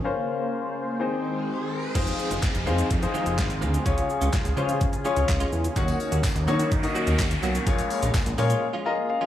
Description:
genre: dance-pop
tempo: 126 BPM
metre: 4/4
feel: straight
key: unclear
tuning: A4 = 440 Hz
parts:
  - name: warm grand piano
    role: accompaniment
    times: 0.0-9.3 s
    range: C4 to Bb5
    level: -28 LUFS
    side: left 5 dB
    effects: sidechain pumping
  - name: filtered supersaw swell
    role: sustained chords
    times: 0.0-9.3 s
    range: Db3 to C5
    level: -31 LUFS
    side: equal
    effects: sidechain pumping
  - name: riser, downlifter and noise sweep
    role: sound effects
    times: 0.6-8.6 s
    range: none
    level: -35 LUFS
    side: equal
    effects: none
  - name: direct-recorded clean electric guitar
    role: riff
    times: 1.9-9.3 s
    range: Eb3 to Gb4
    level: -34 LUFS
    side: right 6 dB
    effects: ensemble chorus
  - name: fat analog bass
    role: bass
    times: 2.0-8.5 s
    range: F1 to Eb3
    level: -26 LUFS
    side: equal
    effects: sidechain pumping
  - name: pop drum kit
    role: drums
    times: 2.0-8.6 s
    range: crash cymbal, handclaps, hi-hat, kick drum, shaker, snare drum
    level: -27 LUFS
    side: equal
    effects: none
  - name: tambourine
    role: percussion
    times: 5.8-8.5 s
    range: none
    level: -43 LUFS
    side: left 9 dB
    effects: none
room: light reverb, digital ambience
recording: small room ambience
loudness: -22 LUFS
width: side -12 dB against mid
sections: 0.0-2.0 A section; 2.0-9.3 B section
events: break 0.0-2.0, 8.6-9.3; riser 0.6-2.0; noise sweep 6.1-9.3; grand piano fill 8.6-9.3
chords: 0.0 Bbmadd9; 1.0 Ab; 2.0 Fm7; 3.9 Db; 5.8 Ebm7; 7.7 Bbm7

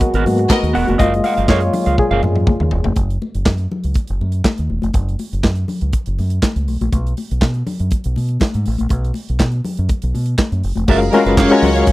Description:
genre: disco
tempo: 121 BPM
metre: 4/4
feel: straight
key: F# major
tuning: A4 = 439 Hz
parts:
  - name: barky reed electric piano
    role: accompaniment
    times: 0.0-3.0, 10.9-11.9 s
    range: G#3 to F#5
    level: -17 LUFS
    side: left 3 dB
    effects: overdrive, fast tremolo
  - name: clean electric guitar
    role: accompaniment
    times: 0.0-2.9, 10.9-11.9 s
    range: B3 to F#5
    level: -21 LUFS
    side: right 6 dB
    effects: none
  - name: mellow French horn section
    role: sustained chords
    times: 0.0-3.0, 10.9-11.9 s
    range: A#2 to E#5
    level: -23 LUFS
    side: right 1 dB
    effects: none
  - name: modern studio drum kit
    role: drums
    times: 0.0-11.9 s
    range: crash cymbal, handclaps, hi-hat, kick drum, snare drum, toms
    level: -17 LUFS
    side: equal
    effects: none
  - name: deep dub fingered electric bass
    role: bass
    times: 0.1-11.9 s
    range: E1 to B2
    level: -18 LUFS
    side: equal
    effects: none
  - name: congas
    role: percussion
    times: 0.3-11.7 s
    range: none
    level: -25 LUFS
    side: left 3 dB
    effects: none
  - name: warm studio violin section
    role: second line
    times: 0.5-0.7, 11.1-11.9 s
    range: A#3 to D#5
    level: -20 LUFS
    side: left 1 dB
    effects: none
room: little or no reverb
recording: dry, close 1970s-style studio recording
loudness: -14 LUFS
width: side -18 dB against mid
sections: 0.0-3.0 A section; 3.0-10.9 B section; 10.9-11.9 C section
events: reed electric piano solo 0.0-3.0; drum fill 2.0-3.0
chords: 0.0 G#m9; 1.0 F#maj9; 3.0 F#5; 6.7 B5; 10.6 N.C.; 10.9 F#maj9

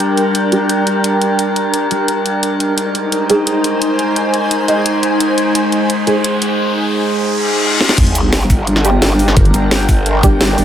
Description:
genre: dark technical drum and bass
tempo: 173 BPM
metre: 4/4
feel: straight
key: G phrygian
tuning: A4 = 441 Hz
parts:
  - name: metallic inharmonic drone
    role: sustained chords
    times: 0.0-10.6 s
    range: G3 to C5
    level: -17 LUFS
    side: equal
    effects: chorus, built-in reverb, sidechain pumping
  - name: drum and bass drum kit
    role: drums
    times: 0.0-10.6 s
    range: crash cymbal, hi-hat, shaker, snare drum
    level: -17 LUFS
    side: equal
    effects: small room reverb
  - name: granular cloud pad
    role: texture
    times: 0.0-10.6 s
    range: D4 to Ab5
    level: -18 LUFS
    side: equal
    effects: built-in reverb, sidechain pumping
  - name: filtered dub chord stab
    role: stabs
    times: 0.5-6.2, 8.8-10.3 s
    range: G3 to Ab4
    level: -18 LUFS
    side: right 2 dB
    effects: phaser, ensemble chorus, tape echo
  - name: riser, reverse cymbal and sub drop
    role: sound effects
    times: 5.0-9.4 s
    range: none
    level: -21 LUFS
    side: left 2 dB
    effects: none
  - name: growl bass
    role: bass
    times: 8.0-10.6 s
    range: G1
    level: -15 LUFS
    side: equal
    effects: chorus, overdrive, sidechain pumping
  - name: electronic kick drum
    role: drums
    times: 8.0-10.3 s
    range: none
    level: -11 LUFS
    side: equal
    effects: small room reverb
  - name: vowel-sweep wobble bass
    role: bass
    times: 9.4-9.5 s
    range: G1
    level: -11 LUFS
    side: equal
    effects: chorus
room: light reverb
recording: none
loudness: -12 LUFS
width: side -10 dB against mid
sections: 0.0-8.0 A section; 8.0-10.6 B section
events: build-up 0.0-8.0; filter sweep on synth stab 0.0-8.0; riser 5.0-8.0; reverse cymbal 7.3-8.0; drum fill 7.8; drop 8.0-10.6; impact 8.0-9.4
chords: 0.0 Gm; 2.4 Ab; 8.0 Gm

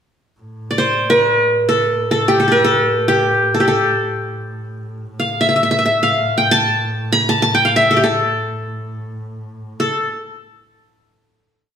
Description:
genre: Arabic maqam ensemble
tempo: free time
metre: none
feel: none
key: A maqam bayati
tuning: A4 = 441 Hz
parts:
  - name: clear double bass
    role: drone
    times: 0.4-9.8 s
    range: A2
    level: -26 LUFS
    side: equal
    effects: none
  - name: qanun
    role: melody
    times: 0.7-10.1 s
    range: G4 to Bb5+50c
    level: -14 LUFS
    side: equal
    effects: none
room: wet stone room reverb, RT60 1.2 s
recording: band playing live in one room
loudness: -13 LUFS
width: side -8 dB against mid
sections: 0.4-9.8 free-time section; 9.8-11.8 final note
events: none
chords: none

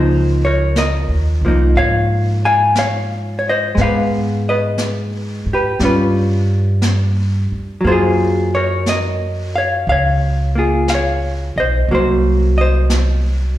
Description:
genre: jazz ballad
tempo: 59 BPM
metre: 4/4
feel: swing 68% on 8ths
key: unclear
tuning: A4 = 439 Hz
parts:
  - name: vintage hollow-body jazz guitar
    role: accompaniment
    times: 0.0-13.6 s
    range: F3 to Ab5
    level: -16 LUFS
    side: left 1 dB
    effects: plate reverb, slapback echo
  - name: upright bass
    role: bass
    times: 0.0-13.6 s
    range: Cb2 to Ab2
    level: -17 LUFS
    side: equal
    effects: none
  - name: jazz brush drum kit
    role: drums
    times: 0.8-13.6 s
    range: brushed snare drum, hi-hat, snare drum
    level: -26 LUFS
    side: equal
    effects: slapback echo
room: light reverb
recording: live gig heard through the venue's PA, recital hall reverb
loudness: -14 LUFS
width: side -13 dB against mid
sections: 0.0-13.6 A section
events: none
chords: 0.0 Db69; 3.8 Abm; 5.8 G7#11; 7.8 Gbmaj9; 11.9 Cm7b5

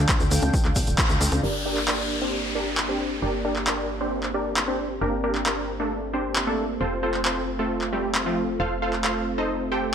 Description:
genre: uplifting trance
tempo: 134 BPM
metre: 4/4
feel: straight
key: G minor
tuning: A4 = 440 Hz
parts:
  - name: lush unison pad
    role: sustained chords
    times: 0.0-9.9 s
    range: D3 to G5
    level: -30 LUFS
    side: right 1 dB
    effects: chorus, sidechain pumping
  - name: tight sequencer bass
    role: bass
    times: 0.0-9.9 s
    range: D1 to D2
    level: -30 LUFS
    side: equal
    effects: sidechain pumping
  - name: electronic kick drum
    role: drums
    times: 0.1-1.1 s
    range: none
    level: -23 LUFS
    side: equal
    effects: none
  - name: punchy analog drum machine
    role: drums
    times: 0.1-9.1 s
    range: congas, handclaps, hi-hat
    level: -27 LUFS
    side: equal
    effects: sidechain pumping on hats, sidechain pumping on perc
  - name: tube shaker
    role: percussion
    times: 0.1-1.4 s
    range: none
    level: -32 LUFS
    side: left 3 dB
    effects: none
  - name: supersaw stab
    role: melody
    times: 1.4-9.9 s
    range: F3 to G5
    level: -26 LUFS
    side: equal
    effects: sidechain pumping, low-pass filter, digital delay
  - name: downlifter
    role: sound effects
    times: 1.4-5.0 s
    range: none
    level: -32 LUFS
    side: left 1 dB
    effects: none
room: light reverb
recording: none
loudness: -22 LUFS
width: side -8 dB against mid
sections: 0.0-1.4 A section; 1.4-9.9 B section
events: band accent 1.0; filter sweep on supersaw synth 1.4-9.9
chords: 0.0 Dm; 1.4 Gm; 6.8 F

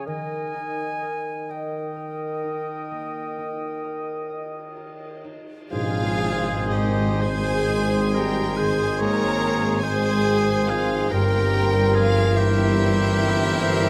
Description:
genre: classical, slow romantic movement for symphony orchestra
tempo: 39-51 BPM (dotted quarters)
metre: 12/8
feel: rubato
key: Ab major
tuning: A4 = 439 Hz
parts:
  - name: clear clarinet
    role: second line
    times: 0.0-13.9 s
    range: Ab4 to C5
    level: -34 LUFS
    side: equal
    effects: none
  - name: concert flute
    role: second line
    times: 0.0-13.9 s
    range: G5 to C6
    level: -37 LUFS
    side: equal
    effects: none
  - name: warm oboe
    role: second line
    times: 0.0-13.9 s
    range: G4 to Eb5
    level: -34 LUFS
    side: equal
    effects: none
  - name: dark bassoon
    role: accompaniment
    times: 0.0-13.9 s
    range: Eb3 to Bb3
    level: -33 LUFS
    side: equal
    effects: none
  - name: concert harp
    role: arpeggios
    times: 0.0-13.9 s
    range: G2 to Eb5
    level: -36 LUFS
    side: equal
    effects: none
  - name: cymbal swell and tam-tam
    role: percussion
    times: 0.1-9.4 s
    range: none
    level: -39 LUFS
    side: equal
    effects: none
  - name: rich chamber violin section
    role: melody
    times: 5.7-13.9 s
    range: Eb5 to Bb5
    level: -32 LUFS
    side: equal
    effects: none
  - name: rich chamber violin section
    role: second line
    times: 5.7-13.9 s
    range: G4 to Db5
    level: -36 LUFS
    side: equal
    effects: none
  - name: rich chamber viola section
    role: accompaniment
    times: 5.7-13.9 s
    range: Eb4 to Bb4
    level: -33 LUFS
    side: equal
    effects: none
  - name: warm French horn section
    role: sustained chords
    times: 5.7-13.9 s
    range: Eb3 to Bb3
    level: -31 LUFS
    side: equal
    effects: none
  - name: warm trombone section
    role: sustained chords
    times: 5.7-13.9 s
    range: Eb3 to C4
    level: -36 LUFS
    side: equal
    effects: none
  - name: warm trumpet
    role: stabs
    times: 5.7-13.9 s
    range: Ab4 to Bb4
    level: -33 LUFS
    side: equal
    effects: none
  - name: warm studio cello section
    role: bass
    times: 5.7-13.9 s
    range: G2 to Ab2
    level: -29 LUFS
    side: equal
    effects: none
  - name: warm studio double bass section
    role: bass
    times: 5.7-13.9 s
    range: G1 to Ab1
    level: -31 LUFS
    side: equal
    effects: none
  - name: warm tuba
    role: bass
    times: 5.7-13.9 s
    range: G1 to Ab1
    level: -32 LUFS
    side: equal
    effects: none
room: moderate scoring stage reverb, RT60 2.0 s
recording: none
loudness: -23 LUFS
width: mono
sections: 0.0-5.7 A section; 5.7-13.9 B section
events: band accent 5.7-6.7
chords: 0.1 Eb; 5.7 Ab; 11.1 C7/G

